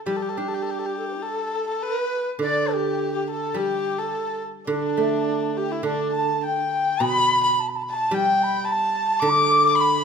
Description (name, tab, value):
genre	chinese traditional, Chinese chamber ensemble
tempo	100-110 BPM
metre	2/4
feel	rubato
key	unclear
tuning	A4 = 440 Hz
part	mellow large dizi	melody	0.1-10.0 s	D4 to D6	-24 LUFS	equal	none
part	warm erhu	second line	0.1-10.0 s	D4 to D6	-25 LUFS	left 3 dB	none
part	guzheng	accompaniment	0.1-10.0 s	B2 to D4	-26 LUFS	right 3 dB	none
room	moderate recital hall reverb, RT60 1.4 s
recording	minimal, uncompressed stereo recording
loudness	-20 LUFS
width	side -6 dB against mid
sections	0.0-7.0 A section; 7.0-10.0 B section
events	none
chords	none